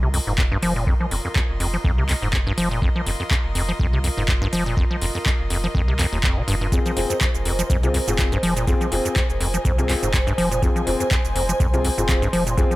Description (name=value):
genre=acid house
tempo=123 BPM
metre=4/4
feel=swing 55% on 16ths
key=F minor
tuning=A4 = 439 Hz
part: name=acid bass, square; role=riff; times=0.0-12.8 s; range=Eb2 to F3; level=-24 LUFS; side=equal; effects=tube saturation, dub echo
part: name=warm sub bass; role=bass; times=0.0-12.6 s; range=F1 to C2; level=-26 LUFS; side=equal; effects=sidechain pumping
part: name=rich chamber string section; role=texture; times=0.0-12.8 s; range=F4 to C6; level=-32 LUFS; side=equal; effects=sidechain pumping
part: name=electro analog drum machine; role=drums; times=0.1-12.8 s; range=handclaps, hi-hat, shaker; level=-27 LUFS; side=equal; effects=overdrive
part: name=electronic kick drum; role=drums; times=0.4-12.7 s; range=none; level=-22 LUFS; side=equal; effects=overdrive
part: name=warm analog pad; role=sustained chords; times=6.7-12.8 s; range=C5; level=-28 LUFS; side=right 2 dB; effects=chorus, sidechain pumping
part: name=warm grand piano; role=stabs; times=6.7-12.7 s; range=C4 to Ab4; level=-27 LUFS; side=left 4 dB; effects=vintage 12-bit sampler grit, dub echo
room=light reverb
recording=none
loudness=-18 LUFS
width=side -18 dB against mid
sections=0.0-12.8 A section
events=fade-in on string section 0.0-12.8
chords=0.0 Fm